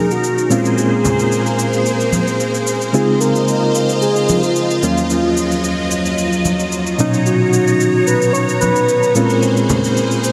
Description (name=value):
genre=nu-disco, nu disco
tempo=111 BPM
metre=4/4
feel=straight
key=unclear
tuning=A4 = 435 Hz
part: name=soft octave-layered synth lead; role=melody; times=0.0-9.7 s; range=F4 to Db5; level=-21 LUFS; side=equal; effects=chorus, delay
part: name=barky reed electric piano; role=accompaniment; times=0.0-10.3 s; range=Eb2 to F4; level=-20 LUFS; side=equal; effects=overdrive, fast tremolo, tape echo
part: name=string machine, full ensemble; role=sustained chords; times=0.0-10.3 s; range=Gb3 to Bb5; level=-22 LUFS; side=equal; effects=phaser, ensemble chorus
part: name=cabasa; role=drums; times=0.1-10.3 s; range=none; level=-28 LUFS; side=equal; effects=overdrive
part: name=congas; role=percussion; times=1.1-9.8 s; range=none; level=-24 LUFS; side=equal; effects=none
room=wet huge ambient reverb, RT60 8.1 s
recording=dreamy mix soaked in reverb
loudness=-15 LUFS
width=mono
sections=0.0-10.3 A section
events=none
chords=0.0 Cbmaj9; 0.5 Bbm9; 2.9 Dbmaj9; 4.8 Ebm9; 7.0 Cbmaj9; 9.2 Bbm9